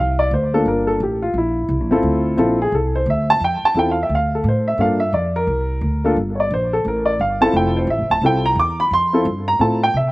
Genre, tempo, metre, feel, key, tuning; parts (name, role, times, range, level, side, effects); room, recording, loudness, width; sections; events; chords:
jazz piano trio; 174 BPM; 4/4; swing 65% on 8ths; D minor; A4 = 440 Hz
warm baby grand piano; melody; 0.0-10.1 s; Bb3 to D6; -17 LUFS; equal; slapback echo
upright bass; bass; 0.0-10.1 s; D1 to C3; -21 LUFS; equal
little or no reverb; recorded outdoors, with no room sound; -16 LUFS; side -19 dB against mid
0.0-10.1 A section
grand piano solo 0.0-10.1
0.0 Dm7; 0.7 Gm7; 2.0 Dm7; 4.8 Gm7; 7.5 Dm7 (rootless)